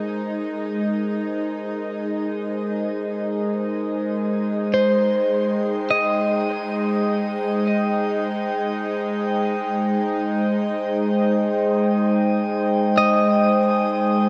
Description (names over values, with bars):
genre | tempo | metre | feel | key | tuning
ambient | free time | none | none | Ab major | A4 = 440 Hz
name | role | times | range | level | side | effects
warbly tape-like pad | sustained chords | 0.0-14.3 s | Ab3 to G5 | -24 LUFS | equal | chorus, built-in reverb
bowed-like drone | drone | 0.0-14.3 s | Ab3 to Eb4 | -29 LUFS | equal | built-in reverb
clean electric guitar | arpeggios | 4.7-14.3 s | C5 to Eb5 | -25 LUFS | equal | diffuse ambient delay
room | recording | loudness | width
wet shimmer reverb, RT60 7.4 s | dark, warm production | -22 LUFS | mono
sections
0.0-14.3 A section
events
fade-in on ambient pad 0.0-14.3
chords
0.0 Abadd9; 3.6 Abmaj7